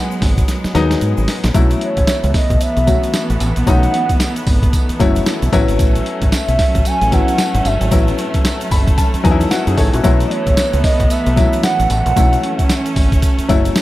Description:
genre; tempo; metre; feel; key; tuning
R&B, new jack swing; 113 BPM; 4/4; swing 60% on 16ths; unclear; A4 = 440 Hz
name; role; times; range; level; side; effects
hollow clarinet-like synth lead; melody; 0.0-12.9 s; C#5 to G#5; -20 LUFS; right 2 dB; chorus, tape echo
warm baby grand piano; accompaniment; 0.0-13.8 s; F#3 to B5; -20 LUFS; left 4 dB; none
dark chamber string section; sustained chords; 0.0-13.8 s; E3 to C#4; -23 LUFS; right 2 dB; none
tube shaker; percussion; 0.1-13.8 s; none; -36 LUFS; right 8 dB; none
deep dub fingered electric bass; bass; 0.2-13.7 s; F#1 to G#2; -17 LUFS; equal; none
boom bap sampler-style drum kit; drums; 0.2-13.8 s; hi-hat, kick drum, snare drum, tambourine; -16 LUFS; equal; none
room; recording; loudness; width
little or no reverb; none; -12 LUFS; side -16 dB against mid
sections
0.0-1.5 A section; 1.5-13.8 B section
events
drum fill 0.5-1.5; grand piano fill 8.4-10.0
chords
0.0 G#m7; 1.5 B7sus4; 5.5 A69; 10.0 B7sus4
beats
0.48 1.01 | 1.55 2.08 2.61 3.14 | 3.67 4.20 4.73 5.26 | 5.79 6.33 6.86 7.39 | 7.92 8.45 8.98 9.51 | 10.04 10.57 11.10 11.63 | 12.17 12.70 13.23 13.76

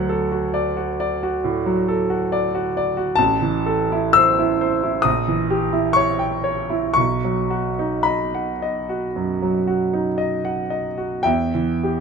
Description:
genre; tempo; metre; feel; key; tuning
classical, romantic nocturne for solo piano; 52-70 BPM; 4/4; rubato; unclear; A4 = 440 Hz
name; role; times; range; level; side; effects
clear concert grand piano; solo; 0.0-12.0 s; A1 to E6; -18 LUFS; equal; none
room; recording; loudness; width
light reverb; close, detailed microphones; -18 LUFS; side -5 dB against mid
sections
0.0-11.3 A section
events
none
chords
0.0 D; 3.2 Am; 5.1 A#dim7; 7.0 B; 11.3 Em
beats
0.53 1.44 2.31 | 3.18 4.15 5.06 5.99 | 6.99 8.09 9.17 10.19 | 11.27

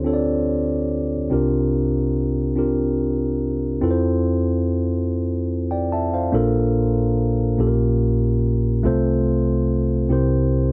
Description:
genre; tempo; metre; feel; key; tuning
gospel; 48 BPM (dotted quarters); 6/8; straight; F major; A4 = 440 Hz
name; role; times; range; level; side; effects
mellow tine electric piano; solo; 0.0-10.7 s; Bb1 to A5; -20 LUFS; equal; none
room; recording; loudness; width
light reverb; dry, close 1970s-style studio recording; -21 LUFS; mono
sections
0.0-3.8 A section; 3.8-10.7 B section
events
none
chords
0.0 Dm7; 1.3 C9sus4; 3.8 Fmaj7; 6.3 Bbmaj7; 7.6 Bbm6; 8.8 F/C; 10.1 C7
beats
0.06 | 1.32 2.58 | 3.83 5.09 | 6.34 7.60 | 8.85 10.10

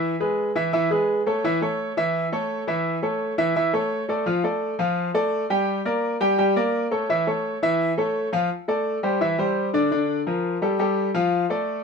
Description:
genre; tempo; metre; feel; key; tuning
latin; 170 BPM; 4/4; straight; D minor; A4 = 439 Hz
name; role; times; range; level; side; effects
bright grand piano; solo; 0.0-11.8 s; D3 to G5; -21 LUFS; equal; none
room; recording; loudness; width
light reverb; close, detailed microphones; -21 LUFS; side -5 dB against mid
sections
0.0-8.5 A section; 8.5-11.8 B section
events
none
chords
0.0 E; 1.4 A; 4.3 Dm; 5.7 Gm; 7.1 A; 8.5 D5; 9.2 C; 9.9 Bb; 10.6 Gsus2; 11.3 Dm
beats
| 0.03 0.38 0.74 1.09 | 1.44 1.79 2.15 2.50 | 2.85 3.21 3.56 3.91 | 4.27 4.62 4.97 5.33 | 5.68 6.03 6.38 6.74 | 7.09 7.44 7.80 8.15 | 8.50 8.86 9.21 9.56 | 9.92 10.27 10.62 10.97 | 11.33 11.68

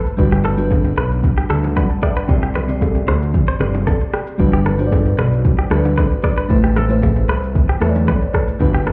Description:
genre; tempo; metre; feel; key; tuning
afrobeats; 114 BPM; 4/4; straight; G major; A4 = 442 Hz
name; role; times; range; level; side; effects
crystalline FM electric piano; accompaniment; 0.0-8.9 s; C3 to A5; -23 LUFS; equal; chorus
deep house drum kit; drums; 0.1-8.9 s; kick drum, rim click, shaker; -21 LUFS; equal; none
fat analog bass; bass; 0.2-8.9 s; G1 to E2; -20 LUFS; equal; none
congas and bongos; percussion; 0.2-8.9 s; none; -29 LUFS; equal; none
direct-recorded clean electric guitar; riff; 0.3-8.9 s; G4 to D5; -28 LUFS; equal; delay
room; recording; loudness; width
light reverb, digital ambience; heard muffled through a wall, club reverb, EQ, nothing above 10.6 kHz; -16 LUFS; mono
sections
0.0-8.9 A section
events
none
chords
0.2 Gmaj7; 2.3 Csus2; 6.5 Amadd9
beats
| 0.18 0.71 1.24 1.76 | 2.29 2.82 3.34 3.87 | 4.39 4.92 5.45 5.97 | 6.50 7.03 7.55 8.08 | 8.61

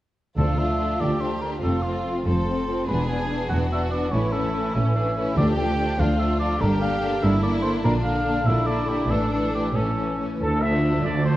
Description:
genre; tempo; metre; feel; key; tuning
cinematic, heroic adventure film score; 96 BPM (dotted quarters); 6/8; straight; D minor; A4 = 442 Hz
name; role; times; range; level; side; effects
warm studio violin section; melody; 0.4-11.4 s; C4 to D4; -30 LUFS; left 4 dB; none
clear studio violin section; second line; 0.4-11.4 s; A3 to A4; -31 LUFS; left 1 dB; none
mellow cor anglais; second line; 0.4-10.4 s; F4 to G#5; -28 LUFS; equal; none
dark symphonic viola section; accompaniment; 0.4-11.4 s; D3 to B3; -28 LUFS; equal; none
rich symphonic cello section; bass; 0.4-11.4 s; D2 to Bb2; -28 LUFS; right 1 dB; none
warm symphonic double bass section; bass; 0.4-11.4 s; E1 to D2; -26 LUFS; right 1 dB; none
timpani; percussion; 0.4-1.0, 5.4-6.0 s; D3; -28 LUFS; equal; none
warm trumpet section; stabs; 10.4-11.4 s; A4 to E5; -26 LUFS; equal; none
room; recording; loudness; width
moderate scoring stage reverb, RT60 1.5 s; worn, warbling old tape, cassette tape, warbly pitch drift; -20 LUFS; side -15 dB against mid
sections
0.4-10.4 A section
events
none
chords
0.4 Dmadd9; 1.6 F; 2.9 E7; 4.1 A; 5.4 Dm; 6.6 Gm; 7.8 Bb; 9.1 Asus4; 10.4 Dmadd9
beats
| 0.38 1.01 | 1.64 2.27 | 2.90 3.51 | 4.13 4.76 | 5.38 6.00 | 6.61 7.23 | 7.84 8.47 | 9.10 9.74 | 10.39 11.02

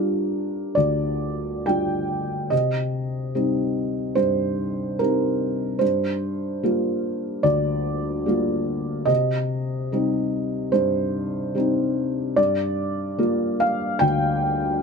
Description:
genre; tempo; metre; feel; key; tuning
neoclassical minimalist piano; 73 BPM; 4/4; rubato; G minor; A4 = 439 Hz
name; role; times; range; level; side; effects
felt-muted upright piano; solo; 0.0-14.8 s; D2 to G5; -21 LUFS; equal; none
room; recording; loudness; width
little or no reverb; close, detailed microphones; -21 LUFS; side -5 dB against mid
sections
0.0-14.8 A section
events
none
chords
0.0 Gm7; 2.5 Cm; 5.8 Gm7; 9.1 Cm; 12.4 Gm7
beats
0.78 1.66 | 2.52 3.35 4.18 4.99 | 5.81 6.63 7.45 8.27 | 9.09 9.92 10.74 11.56 | 12.38 13.20 14.02

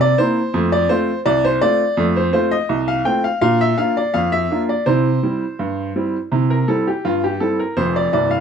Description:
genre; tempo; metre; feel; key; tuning
ragtime piano; 83 BPM; 2/4; straight; F major; A4 = 438 Hz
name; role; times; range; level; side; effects
clear upright piano; solo; 0.0-8.4 s; C1 to G5; -16 LUFS; equal; none
room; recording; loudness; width
moderate studio reverb, RT60 0.8 s; none; -16 LUFS; side -7 dB against mid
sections
0.0-8.4 A section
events
none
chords
0.0 C7; 0.5 F; 3.4 Bb; 4.9 C; 7.8 F5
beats
| 0.54 1.26 | 1.98 2.70 | 3.42 4.14 | 4.86 5.59 | 6.31 7.04 | 7.76

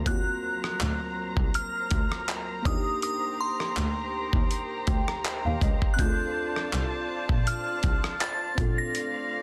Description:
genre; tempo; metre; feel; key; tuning
contemporary R&B; 81 BPM; 4/4; swing 54% on 16ths; unclear; A4 = 439 Hz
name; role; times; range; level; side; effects
muted felt-like synth keys; accompaniment; 0.0-9.4 s; Bb3 to Bb5; -38 LUFS; equal; chorus, phaser
dark studio string section; sustained chords; 0.0-9.4 s; Gb3 to Bb5; -38 LUFS; equal; none
glassy synth bell; melody; 0.1-9.4 s; C6 to Bb6; -34 LUFS; equal; chorus, tape echo
clear double bass; bass; 0.1-8.7 s; Bb1 to Eb2; -34 LUFS; equal; none
dusty soul sampler-style drum kit; drums; 0.1-9.1 s; handclaps, hi-hat, kick drum, rim click; -30 LUFS; equal; none
room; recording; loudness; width
digital ambience; dense, heavily limited modern master; -28 LUFS; mono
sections
0.1-9.4 A section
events
synth keys fill 4.5-6.0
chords
0.1 Ebm6 (rootless); 2.7 Cm7; 6.0 Dm7; 8.6 Bbmaj9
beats
| 0.06 0.80 1.54 2.28 | 3.02 3.77 4.51 5.25 | 5.99 6.73 7.47 8.21 | 8.95

